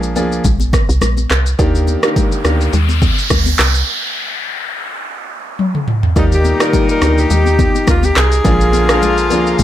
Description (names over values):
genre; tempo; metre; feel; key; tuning
afrobeats; 105 BPM; 4/4; swing 55% on 16ths; unclear; A4 = 440 Hz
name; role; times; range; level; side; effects
clear grand piano; accompaniment; 0.0-2.7, 6.2-9.6 s; Eb3 to D5; -18 LUFS; right 1 dB; none
woody FM bass; bass; 0.0-9.6 s; Bb1 to Eb2; -15 LUFS; equal; none
afro-pop drum kit; drums; 0.0-9.6 s; handclaps, kick drum, rim click, shaker, toms; -16 LUFS; equal; overdrive
congas; percussion; 0.2-9.6 s; none; -24 LUFS; left 8 dB; none
noise sweep; sound effects; 2.1-6.2 s; none; -21 LUFS; equal; none
breathy alto saxophone; melody; 6.2-9.6 s; Eb4 to Bb4; -17 LUFS; equal; digital delay
mellow horn section; second line; 6.2-9.6 s; Bb2 to F4; -19 LUFS; left 5 dB; none
warm analog pad; sustained chords; 6.2-9.6 s; Eb4 to D6; -25 LUFS; right 1 dB; chorus
room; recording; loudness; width
little or no reverb; none; -11 LUFS; side -12 dB against mid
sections
0.0-6.2 A section; 6.2-9.6 B section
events
noise sweep 2.1-6.2; break 3.9-6.2; drum fill 5.6-6.2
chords
0.0 Bb7; 1.6 Ebmaj7; 3.9 N.C.; 6.2 Ebmaj7; 8.4 Bb7